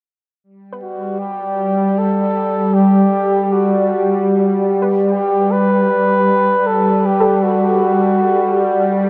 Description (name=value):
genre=ambient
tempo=77 BPM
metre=3/4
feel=straight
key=G major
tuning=A4 = 440 Hz
part: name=bowed-like drone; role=drone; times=1.0-9.1 s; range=G3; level=-18 LUFS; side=equal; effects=built-in reverb, phaser
part: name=soft round pluck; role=arpeggios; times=0.7-8.1 s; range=A4 to B4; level=-26 LUFS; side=equal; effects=none
part: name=mellow flugelhorn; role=melody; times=0.8-9.0 s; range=F#4 to B4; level=-19 LUFS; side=equal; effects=delay
room=wet huge ambient reverb, RT60 7.3 s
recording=worn, warbling old tape, cassette tape, warbly pitch drift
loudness=-15 LUFS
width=mono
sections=0.4-9.1 A section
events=fade-in on flugelhorn 0.4-9.1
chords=0.4 Gmaj7